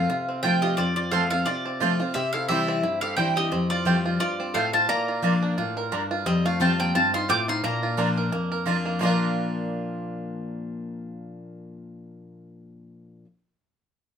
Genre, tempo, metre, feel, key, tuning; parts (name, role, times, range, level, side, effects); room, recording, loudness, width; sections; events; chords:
bluegrass; 175 BPM; 4/4; swing 56% on 8ths; Bb major; A4 = 440 Hz
mandolin; melody; 0.0-8.6 s; D5 to D6; -26 LUFS; equal
lap resonator guitar; second line; 0.0-8.6 s; G3 to D5; -33 LUFS; left 2 dB
picked steel-string acoustic guitar; accompaniment; 0.0-13.3 s; F2 to F4; -27 LUFS; left 2 dB
bluegrass banjo; arpeggios; 0.0-13.2 s; G3 to Bb4; -30 LUFS; right 3 dB
mandolin; stabs; 0.4-13.3 s; A3 to Bb5; -29 LUFS; right 7 dB
moderate studio reverb, RT60 0.6 s; minimal, uncompressed stereo recording; -22 LUFS; side -8 dB against mid
0.0-6.3 A section; 6.3-9.0 B section; 9.0-11.8 C section
0.0 F; 2.1 C; 3.5 Fadd9; 4.9 Bb; 6.3 Fadd9; 7.6 Bb